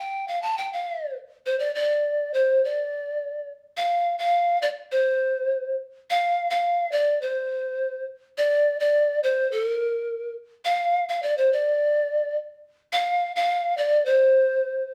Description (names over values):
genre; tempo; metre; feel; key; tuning
andean folk, Andean ensemble; 105 BPM; 2/4; straight; D minor; A4 = 440 Hz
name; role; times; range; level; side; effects
mellow polished pan flute; solo; 0.0-14.9 s; Bb4 to A5; -24 LUFS; equal; none
room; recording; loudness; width
wet studio reverb, RT60 0.7 s; heard from further back in the room; -24 LUFS; mono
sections
0.0-3.8 A section; 3.8-12.9 B section; 12.9-14.9 B section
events
speeding up 0.0-14.9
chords
none